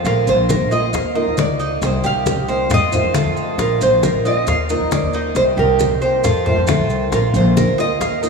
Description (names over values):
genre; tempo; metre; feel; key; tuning
latin, Cuban son and guajira; 136 BPM; 4/4; straight; Bb major; A4 = 438 Hz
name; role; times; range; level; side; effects
nylon-string guitar; melody; 0.0-8.3 s; A4 to F5; -19 LUFS; right 2 dB; none
fingerpicked old ladder-braced acoustic guitar; accompaniment; 0.0-8.3 s; C3 to Bb4; -24 LUFS; left 1 dB; none
Cuban tres; arpeggios; 0.0-8.3 s; Eb4 to F5; -22 LUFS; right 2 dB; none
upright bass; bass; 0.0-8.3 s; Bb1 to F2; -21 LUFS; equal; none
maracas; percussion; 0.0-8.3 s; none; -34 LUFS; right 6 dB; none
bongos; percussion; 0.1-8.2 s; none; -28 LUFS; left 7 dB; none
congas; percussion; 0.1-8.3 s; none; -24 LUFS; left 3 dB; none
room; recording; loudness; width
wet cathedral reverb, RT60 6.2 s; in a vast, echoing space, studio ambience; -14 LUFS; side -4 dB against mid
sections
0.0-8.3 A section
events
none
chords
0.1 Bbadd9; 0.9 Ebsus2; 1.8 Cm7; 2.7 F7; 3.6 Bbadd9; 4.5 Ebsus2; 5.4 Cm7; 6.2 F7; 7.1 Bbadd9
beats
| 0.06 0.50 0.94 1.38 | 1.82 2.26 2.71 3.15 | 3.59 4.03 4.47 4.91 | 5.36 5.80 6.24 6.68 | 7.12 7.56 8.00